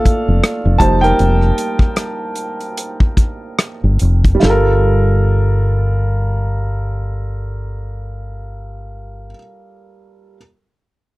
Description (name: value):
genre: R&B, neo-soul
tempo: 70-80 BPM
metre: 4/4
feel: swing 59% on 16ths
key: G minor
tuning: A4 = 440 Hz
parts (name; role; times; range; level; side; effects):
- warm upright piano; accompaniment; 0.0-10.4 s; G3 to A5; -19 LUFS; right 1 dB; none
- deep dub fingered electric bass; bass; 0.1-9.3 s; F1 to G1; -15 LUFS; equal; none
- warm soul drum kit; drums; 0.1-4.7 s; hi-hat, kick drum, rim click, snare drum; -14 LUFS; equal; none
room: little or no reverb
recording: dry, close 1970s-style studio recording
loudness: -13 LUFS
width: side -20 dB against mid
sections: 0.0-4.4 A section; 4.4-7.9 B section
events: slowing down 0.0-4.4; upright piano solo 0.0-4.4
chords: 0.0 Gm9 (rootless); 0.8 F9sus4; 4.4 Gm9